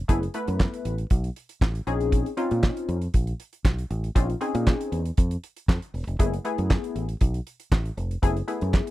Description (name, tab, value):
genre	early-eighties boogie funk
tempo	118 BPM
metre	4/4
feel	straight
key	unclear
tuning	A4 = 440 Hz
part	funky polysynth comp	accompaniment	0.1-8.9 s	A3 to B4	-28 LUFS	left 3 dB	chorus
part	fingered electric bass	bass	0.1-8.8 s	E1 to A#2	-27 LUFS	equal	none
part	damped 70s drum kit	drums	0.1-8.9 s	handclaps, hi-hat, kick drum, snare drum	-22 LUFS	equal	none
room	little or no reverb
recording	dry, close 1970s-style studio recording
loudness	-23 LUFS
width	side -16 dB against mid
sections	0.0-8.9 A section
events	none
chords	0.0 F#m11; 1.9 A#m11; 6.2 F#m11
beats	| 0.09 0.60 1.11 1.62 | 2.12 2.63 3.14 3.65 | 4.16 4.67 5.18 5.68 | 6.19 6.70 7.21 7.72 | 8.23 8.73